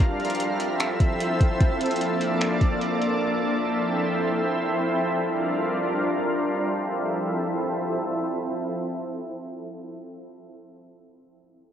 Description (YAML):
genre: hip hop, atmospheric cloud-rap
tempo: free time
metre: none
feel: none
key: F major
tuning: A4 = 441 Hz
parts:
  - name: shimmering ambient pad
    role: sustained chords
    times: 0.0-9.5 s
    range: F3 to F5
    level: -24 LUFS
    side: equal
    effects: chorus, built-in reverb, sidechain pumping, cassette tape
  - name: smooth R&B drum kit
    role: drums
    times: 0.2-3.1 s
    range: finger snaps, hi-hat, kick drum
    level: -23 LUFS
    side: equal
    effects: cassette tape
room: moderate studio reverb, RT60 0.6 s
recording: home recording on cassette, low-pass filter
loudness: -22 LUFS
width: side -9 dB against mid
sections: 0.0-6.4 A section; 6.4-9.7 B section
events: filter sweep 0.0-6.4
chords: 0.0 Fmaj7; 1.6 Bbmaj7; 3.2 Fmaj7; 4.8 Gm7; 6.4 Fmaj7